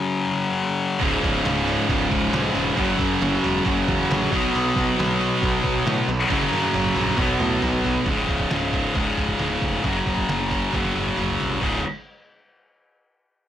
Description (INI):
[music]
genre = heavy metal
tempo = 136 BPM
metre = 4/4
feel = straight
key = unclear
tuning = A4 = 444 Hz
[part]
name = heavy high-gain guitar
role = riff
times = 0.0-11.8 s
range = C#2 to B3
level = -22 LUFS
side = left 4 dB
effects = distortion
[part]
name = high-gain distorted guitar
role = riff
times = 1.0-11.8 s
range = C#2 to B3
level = -28 LUFS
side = right 12 dB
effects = distortion
[part]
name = sludgy distorted guitar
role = riff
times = 1.0-8.1 s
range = C#2 to B3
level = -27 LUFS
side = right 4 dB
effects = overdrive
[part]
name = fuzz picked electric bass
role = bass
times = 1.0-11.8 s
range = C#1 to A2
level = -28 LUFS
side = right 1 dB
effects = overdrive
[part]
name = lo-fi sampler-style drum kit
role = drums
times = 1.0-11.7 s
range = crash cymbal, hi-hat, kick drum, ride cymbal, snare drum, toms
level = -28 LUFS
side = right 1 dB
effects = none
[sound]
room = little or no reverb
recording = blown-out, overdriven recording, overdrive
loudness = -19 LUFS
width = side -11 dB against mid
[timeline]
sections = 0.0-8.1 A section; 8.1-11.6 B section; 11.6-13.4 C section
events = drum fill 6.3-8.1, 10.7-11.6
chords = 0.0 F#5; 1.0 C#5; 2.8 F#5; 4.3 B5; 6.3 F#5; 7.2 B5; 8.1 C#5; 9.8 F#5; 11.6 C#5